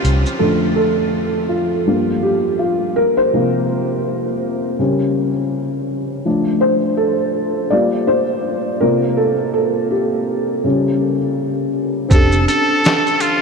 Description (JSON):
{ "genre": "lo-fi hip hop", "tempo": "82 BPM", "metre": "4/4", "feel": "swing 58% on 16ths", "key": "F major", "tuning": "A4 = 439 Hz", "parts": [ { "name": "trumpet with straight mute", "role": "melody", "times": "0.0, 12.1-13.4 s", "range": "F4 to A4", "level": "-20 LUFS", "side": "equal", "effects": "low-pass filter, diffuse ambient delay" }, { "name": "felt-muted upright piano", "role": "accompaniment", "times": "0.0-13.4 s", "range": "F2 to D5", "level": "-16 LUFS", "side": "equal", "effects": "low-pass filter" }, { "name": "vintage muted fingered electric bass", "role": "bass", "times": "0.0-0.2, 12.1-12.5 s", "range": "F1 to C2", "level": "-16 LUFS", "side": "equal", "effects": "none" }, { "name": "lo-fi sampler-style drum kit", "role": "drums", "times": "0.0-0.4, 12.1-13.4 s", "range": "handclaps, hi-hat, kick drum, shaker, snare drum", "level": "-19 LUFS", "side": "equal", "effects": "none" } ], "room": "wet huge ambient reverb, RT60 7.9 s", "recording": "dreamy mix soaked in reverb", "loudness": "-15 LUFS", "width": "side -4 dB against mid", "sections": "0.4-12.1 A section; 12.1-13.4 B section", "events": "break 0.0-0.4; felt piano solo 0.4-12.1", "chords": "0.4 F6; 1.9 Gm7; 3.0 C7sus4; 4.8 N.C.; 6.3 F6; 7.7 Gm7; 8.8 C7sus4; 10.6 N.C.; 12.1 F6" }